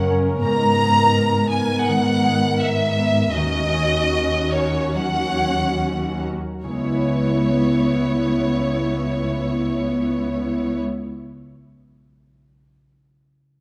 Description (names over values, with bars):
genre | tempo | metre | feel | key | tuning
cinematic | 68-86 BPM | 4/4 | rubato | C# dorian | A4 = 441 Hz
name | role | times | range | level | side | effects
rich studio violin section | melody | 0.0-10.8 s | C#5 to A#5 | -25 LUFS | equal | none
dark studio viola section | accompaniment | 0.0-10.8 s | B3 to A#4 | -25 LUFS | equal | none
concert harp | arpeggios | 0.0-11.2 s | F#2 to E5 | -30 LUFS | equal | none
warm studio cello section | bass | 0.0-10.8 s | C#2 to G#2 | -26 LUFS | equal | none
room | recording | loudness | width
moderate scoring stage reverb, RT60 2.0 s | close, detailed microphones, faint mains hum | -20 LUFS | mono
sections
0.0-6.6 A section; 6.6-10.1 B section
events
slowing down 0.0-6.6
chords
0.4 G#madd9; 3.4 D#m7; 6.6 C#m7